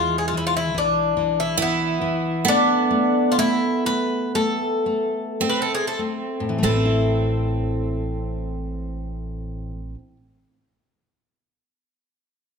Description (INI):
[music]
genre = fado-style ballad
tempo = 46-73 BPM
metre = 4/4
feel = rubato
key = A harmonic minor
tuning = A4 = 440 Hz
[part]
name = Irish bouzouki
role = melody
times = 0.0-9.9 s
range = B3 to B4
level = -22 LUFS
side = left 2 dB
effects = none
[part]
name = picked twelve-string acoustic guitar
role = second line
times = 0.0-9.9 s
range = G#3 to E4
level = -26 LUFS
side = right 6 dB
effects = none
[part]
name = nylon-string guitar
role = accompaniment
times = 0.0-10.2 s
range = A2 to B4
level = -26 LUFS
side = left 4 dB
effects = none
[part]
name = upright bass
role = bass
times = 0.0-9.9 s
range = A1 to E2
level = -27 LUFS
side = equal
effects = none
[sound]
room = wet recital hall reverb, RT60 1.4 s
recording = close, detailed microphones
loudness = -19 LUFS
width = side -5 dB against mid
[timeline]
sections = 0.0-6.6 A section; 6.6-11.6 B section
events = slowing down 0.0-6.6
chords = 0.0 E; 2.4 Amadd9